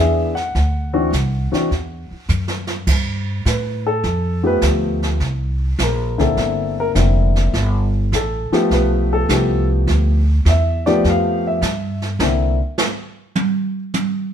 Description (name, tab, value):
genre	jazz piano trio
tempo	103 BPM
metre	4/4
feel	swing 69% on 8ths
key	G mixolydian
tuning	A4 = 441 Hz
part	warm upright piano	melody	0.0-12.6 s	D3 to F#5	-19 LUFS	left 2 dB	none
part	upright bass	bass	0.0-12.6 s	F1 to A2	-18 LUFS	equal	none
part	jazz brush drum kit	drums	0.4-14.1 s	brushed snare drum, crash cymbal, hi-hat, kick drum, snare drum, toms	-22 LUFS	right 3 dB	none
room	light reverb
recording	band playing live in one room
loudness	-16 LUFS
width	side -9 dB against mid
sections	0.0-2.9 A section; 2.9-14.3 B section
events	drum fill 2.3-2.9; upright piano solo 2.9-14.3; drum solo 12.2-14.3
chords	0.0 E7; 0.5 D9; 2.9 G9; 5.2 C9; 7.5 G9; 12.2 N.C.